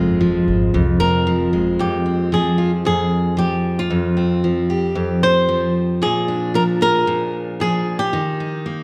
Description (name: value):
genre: acoustic pop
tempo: 114 BPM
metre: 4/4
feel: straight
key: F minor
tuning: A4 = 442 Hz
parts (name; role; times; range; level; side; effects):
- picked steel-string acoustic guitar; accompaniment; 0.0-8.8 s; F2 to Ab4; -20 LUFS; equal; none
- upright bass; bass; 0.0-1.7 s; F1 to C2; -25 LUFS; equal; none
- flamenco guitar; melody; 1.0-8.8 s; F4 to C5; -23 LUFS; equal; none
room: moderate scoring stage reverb, RT60 2.0 s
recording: none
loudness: -18 LUFS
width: mono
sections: 0.0-1.8 A section; 1.8-8.8 B section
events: none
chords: 0.0 Fm; 6.0 Bb7; 8.1 Eb